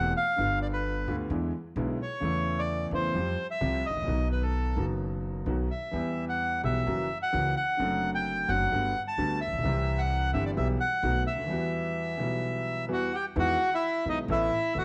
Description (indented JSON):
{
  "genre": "tango",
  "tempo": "130 BPM",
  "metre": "4/4",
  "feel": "rubato",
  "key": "E minor",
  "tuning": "A4 = 444 Hz",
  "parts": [
    { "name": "bandoneon", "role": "melody", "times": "0.0-14.8 s", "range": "D#4 to A5", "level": "-32 LUFS", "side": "equal", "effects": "none" },
    { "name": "warm concert grand piano", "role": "accompaniment", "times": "0.0-14.8 s", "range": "E1 to A4", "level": "-34 LUFS", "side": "equal", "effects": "none" },
    { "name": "upright bass", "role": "bass", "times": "0.0-14.8 s", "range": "E1 to F2", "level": "-35 LUFS", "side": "equal", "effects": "none" }
  ],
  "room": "moderate echo chamber reverb, RT60 1.5 s, small room reverb",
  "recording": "nothing above 11.0 kHz",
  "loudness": "-29 LUFS",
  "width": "mono",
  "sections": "0.0-13.4 A section; 13.4-14.8 B section",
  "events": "break 11.5-13.4",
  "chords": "0.4 G7; 1.3 E7; 2.2 Aadd9/E; 3.1 Fsus2; 4.1 B; 5.9 Em; 6.9 F#7; 7.8 D7/F#; 8.7 Gmaj7; 9.6 C; 10.6 Em/B; 11.0 B7; 11.5 Emadd9; 13.4 Emaj7; 14.3 Asus2"
}